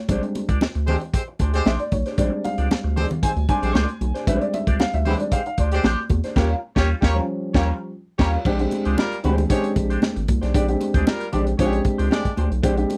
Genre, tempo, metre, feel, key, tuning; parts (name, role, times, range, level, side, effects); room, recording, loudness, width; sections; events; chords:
funk; 115 BPM; 4/4; straight; Bb mixolydian; A4 = 442 Hz
dark upright piano; stabs; 0.0-13.0 s; F3 to Ab5; -27 LUFS; equal
clean electric guitar; accompaniment; 0.1-12.9 s; G3 to D5; -32 LUFS; equal; wah
round analog bass; bass; 0.1-12.8 s; Ab1 to E2; -25 LUFS; equal
crunchy breakbeat drum kit; drums; 0.1-13.0 s; crash cymbal, hi-hat, kick drum, snare drum; -24 LUFS; equal
congas; percussion; 0.1-13.0 s; -33 LUFS; equal
dark horn section; second line; 0.9-12.3 s; F3 to D5; -29 LUFS; equal
little or no reverb; dry, close 1970s-style studio recording; -22 LUFS; mono
0.0-8.5 A section; 8.5-13.0 B section
upright piano solo 0.0-8.5; band accent 6.4-8.5
0.1 Bb13 (rootless); 6.4 Eb9; 8.5 Bb13